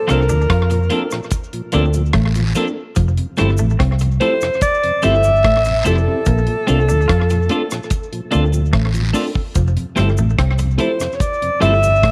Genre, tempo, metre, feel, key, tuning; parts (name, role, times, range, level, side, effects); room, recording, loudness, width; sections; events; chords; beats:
lovers rock reggae; 73 BPM; 4/4; straight; F major; A4 = 440 Hz
clear alto saxophone; melody; 0.0-12.1 s; A4 to E5; -20 LUFS; equal; tape echo
mellow tine electric piano; accompaniment; 0.1-11.7 s; C4 to A4; -28 LUFS; equal; slapback echo
mellow tonewheel organ; accompaniment; 0.1-11.9 s; F2 to E4; -31 LUFS; equal; overdrive, chorus vibrato, slow rotary speaker, slapback echo
electric guitar at the edge of break-up; riff; 0.1-12.1 s; F3 to F4; -29 LUFS; equal; slapback echo
twelve-string electric guitar; stabs; 0.1-11.9 s; F3 to A4; -26 LUFS; equal
vintage muted fingered electric bass; bass; 0.1-12.1 s; F1 to F2; -18 LUFS; equal
deep reggae drum kit; drums; 0.1-12.1 s; hi-hat, kick drum, rim click; -24 LUFS; equal; slapback echo
cabasa and guiro; percussion; 0.1-12.1 s; -35 LUFS; equal; slapback echo
light reverb, studio reverb; -17 LUFS; mono
0.0-12.1 A section
0.0 Bbmaj7; 3.0 Fmaj7; 6.3 Bbmaj7; 9.6 Fmaj7
0.50 1.32 2.15 | 2.97 3.79 4.62 5.44 | 6.27 7.09 7.91 8.74 | 9.56 10.39 11.21 12.04